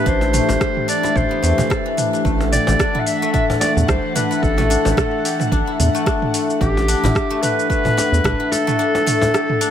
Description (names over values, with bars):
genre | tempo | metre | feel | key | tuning
organic downtempo | 110 BPM | 4/4 | swing 57% on 16ths | A dorian | A4 = 440 Hz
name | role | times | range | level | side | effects
warm clarinet | melody | 0.0-9.7 s | G4 to F#5 | -21 LUFS | equal | digital delay, shimmer reverb
airy breathy pad | sustained chords | 0.0-9.7 s | E3 to F#5 | -26 LUFS | equal | chorus, sidechain pumping, shimmer reverb
guzheng | arpeggios | 0.0-9.7 s | E3 to G4 | -21 LUFS | left 3 dB | digital delay, shimmer reverb
round analog bass | bass | 0.1-8.3 s | A1 to E2 | -19 LUFS | right 1 dB | sidechain pumping
deep house drum kit | drums | 0.1-9.7 s | hi-hat, rim click, shaker, toms | -23 LUFS | right 2 dB | overdrive, studio ambience
electronic kick drum | drums | 0.1-8.4 s | none | -22 LUFS | right 1 dB | overdrive, studio ambience
cajon | percussion | 0.2-9.3 s | none | -25 LUFS | left 2 dB | none
room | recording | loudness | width
light reverb | none | -15 LUFS | side -9 dB against mid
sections
0.0-9.7 A section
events
none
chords
0.0 A7(no3)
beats
| 0.06 0.61 1.16 1.70 | 2.25 2.79 3.34 3.88 | 4.43 4.97 5.52 6.06 | 6.61 7.16 7.70 8.25 | 8.79 9.34